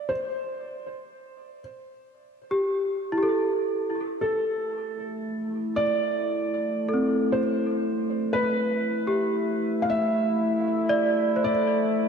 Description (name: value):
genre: ambient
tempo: 58 BPM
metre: 4/4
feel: straight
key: A minor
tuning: A4 = 440 Hz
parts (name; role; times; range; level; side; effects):
- felt-muted upright piano; melody; 0.0-12.1 s; A4 to F5; -28 LUFS; right 1 dB; tape echo
- worn celesta; arpeggios; 2.5-12.1 s; C4 to D5; -26 LUFS; right 1 dB; tape echo
- analog drone; drone; 5.0-12.1 s; A3 to E4; -26 LUFS; left 1 dB; chorus
room: wet lush hall reverb, RT60 2.9 s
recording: dark, warm production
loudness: -23 LUFS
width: side -6 dB against mid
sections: 0.0-12.1 A section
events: none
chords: 0.1 C6; 4.2 Am7; 8.4 Gsus24/A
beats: | 0.09 1.13 2.16 3.19 | 4.23 5.26 6.30 7.33 | 8.37 9.40 10.44 11.47